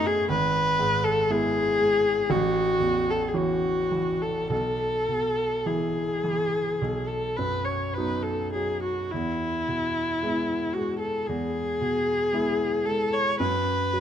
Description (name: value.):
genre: classical, romantic duo for viola and grand piano.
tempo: 51-61 BPM.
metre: 4/4.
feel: rubato.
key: E major.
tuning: A4 = 440 Hz.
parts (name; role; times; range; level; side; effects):
rich viola; melody; 0.0-14.0 s; E4 to C#5; -25 LUFS; left 1 dB; none.
warm grand piano; accompaniment; 0.0-14.0 s; G#1 to F#4; -28 LUFS; right 2 dB; none.
room: light reverb.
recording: close, detailed microphones.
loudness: -23 LUFS.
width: side -9 dB against mid.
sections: 0.0-14.0 A section.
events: none.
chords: 0.3 E/G#; 2.3 F#m7/A; 4.5 E/B; 6.8 B; 9.1 E; 13.4 B5/F#.